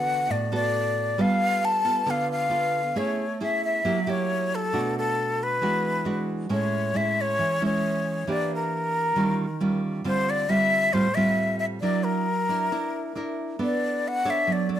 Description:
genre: bossa nova.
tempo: 135 BPM.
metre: 4/4.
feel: straight.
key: unclear.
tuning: A4 = 439 Hz.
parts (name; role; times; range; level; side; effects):
breathy jazz flute; melody; 0.0-14.8 s; A4 to A5; -25 LUFS; left 2 dB; none.
nylon-string guitar; accompaniment; 0.0-14.8 s; A2 to C#5; -26 LUFS; right 2 dB; none.
room: light reverb.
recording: close, detailed microphones.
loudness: -22 LUFS.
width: side -10 dB against mid.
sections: 0.0-6.5 A section; 6.5-14.8 A section.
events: none.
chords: 0.0 D6; 1.2 G9; 3.0 Amaj7; 3.8 F#7b9; 4.7 Bm7; 5.6 E9; 6.5 Amaj7; 8.3 Em7b5; 9.2 D#9; 10.1 Dm11; 11.8 F#7b13; 13.6 Bm9.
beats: 0.29 0.74 | 1.18 1.62 2.07 2.51 | 2.96 3.40 3.84 4.29 | 4.73 5.18 5.62 6.06 | 6.51 6.95 7.39 7.84 | 8.28 8.72 9.17 9.61 | 10.05 10.49 10.94 11.38 | 11.82 12.27 12.71 13.15 | 13.59 14.04 14.48.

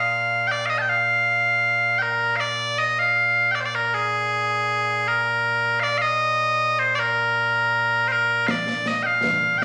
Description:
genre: scottish traditional, Scottish pipe music.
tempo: 79 BPM.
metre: 2/4.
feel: straight.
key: Bb mixolydian.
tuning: A4 = 440 Hz.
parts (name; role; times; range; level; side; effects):
loud bright bagpipes; melody; 0.0-9.6 s; Bb2 to A5; -21 LUFS; equal; none.
concert snare drum and concert bass drum; drums; 8.5-9.6 s; none; -30 LUFS; equal; none.
room: light reverb.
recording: recorded on a phone in the room, club reverb.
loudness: -21 LUFS.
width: mono.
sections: 0.0-8.5 A section; 8.5-9.6 A section.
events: none.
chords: none.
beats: 0.13 | 0.89 1.65 | 2.41 3.17 | 3.93 4.68 | 5.45 6.20 | 6.96 7.72 | 8.48 9.24.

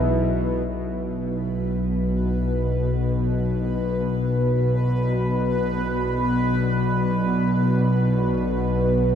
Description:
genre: dark ambient drone.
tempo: free time.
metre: none.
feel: none.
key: B minor.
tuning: A4 = 440 Hz.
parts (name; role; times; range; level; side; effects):
deep dark ambient pad; sustained chords; 0.0-9.2 s; E4 to E5; -32 LUFS; right 1 dB; chorus, built-in reverb.
bowed-like drone; drone; 0.0-9.2 s; B1 to B2; -21 LUFS; equal; built-in reverb.
bubbling stepped-filter texture; texture; 1.6-9.2 s; B4; -28 LUFS; right 1 dB; chorus, built-in reverb.
room: wet huge ambient reverb, RT60 8.1 s.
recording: none.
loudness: -20 LUFS.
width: side -8 dB against mid.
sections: 0.7-9.2 A section.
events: fade-in on ambient pad 0.7-9.2.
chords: 0.0 E; 0.7 Bm.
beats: free time.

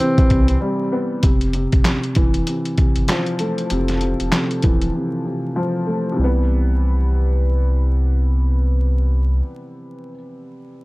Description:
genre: hip hop, boom-bap hip-hop.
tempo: 97 BPM.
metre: 4/4.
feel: swing 60% on 16ths.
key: C major.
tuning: A4 = 440 Hz.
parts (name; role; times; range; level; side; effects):
breathy tenor saxophone; melody; 0.0-0.6 s; C4; -22 LUFS; equal; high-pass filter, low-pass filter, tape echo.
dark upright piano; accompaniment; 0.0-10.8 s; C3 to B4; -22 LUFS; equal; high-pass filter, low-pass filter.
trip hop sampler-style drum kit; drums; 0.2-4.9 s; handclaps, hi-hat, kick drum, snare drum; -17 LUFS; equal; none.
warm sub bass; bass; 0.3-9.4 s; E1 to C2; -18 LUFS; equal; none.
room: small room ambience.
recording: dark, warm production, vinyl crackle.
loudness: -16 LUFS.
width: side -22 dB against mid.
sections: 0.0-1.2 A section; 1.2-6.2 B section; 6.2-8.7 C section.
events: break 0.6-1.2, 4.9-6.2.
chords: 0.0 Cmaj7; 1.2 Fmaj7; 6.2 Cmaj7.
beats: 0.61 | 1.23 1.85 2.47 3.09 | 3.71 4.33 4.94 5.56 | 6.18 6.80 7.42 8.04.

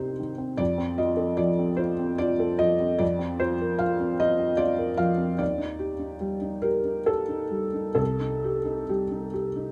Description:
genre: neoclassical minimalist piano.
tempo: 65-76 BPM.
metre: 3/4.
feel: rubato.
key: F mixolydian.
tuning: A4 = 440 Hz.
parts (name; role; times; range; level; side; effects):
felt-muted upright piano; solo; 0.0-9.7 s; C2 to F5; -26 LUFS; equal; none.
room: light reverb.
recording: none.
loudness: -26 LUFS.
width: mono.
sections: 0.0-9.7 A section.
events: none.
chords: 0.0 Cm; 0.6 F; 3.0 Bbsus2/F; 5.4 Ebmaj7; 8.0 Cm.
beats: | 0.60 1.40 2.20 | 3.01 3.81 4.60 | 5.41 6.24 7.10 | 8.00 8.91.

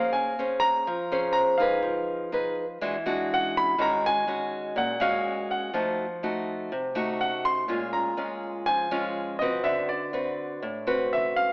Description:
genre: bossa nova.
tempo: 123 BPM.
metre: 4/4.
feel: straight.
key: Bb minor.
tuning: A4 = 440 Hz.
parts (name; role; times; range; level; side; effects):
warm baby grand piano; melody; 0.0-11.5 s; D5 to C6; -26 LUFS; equal; none.
nylon-string guitar; accompaniment; 0.0-11.5 s; A2 to C5; -27 LUFS; equal; none.
room: wet large studio reverb, RT60 1.3 s.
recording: AM radio sound.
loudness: -24 LUFS.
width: side -27 dB against mid.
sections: 0.0-11.5 A section.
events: none.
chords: 0.0 Bbm9; 1.8 Fm7b5; 2.8 E9; 3.8 Ebm11; 5.7 F7b9; 7.7 Bbm7; 9.6 D6.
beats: 0.37 0.85 1.34 | 1.83 2.32 2.81 3.29 | 3.78 4.27 4.76 5.24 | 5.73 6.22 6.71 7.20 | 7.68 8.17 8.66 9.15 | 9.64 10.12 10.61 11.10.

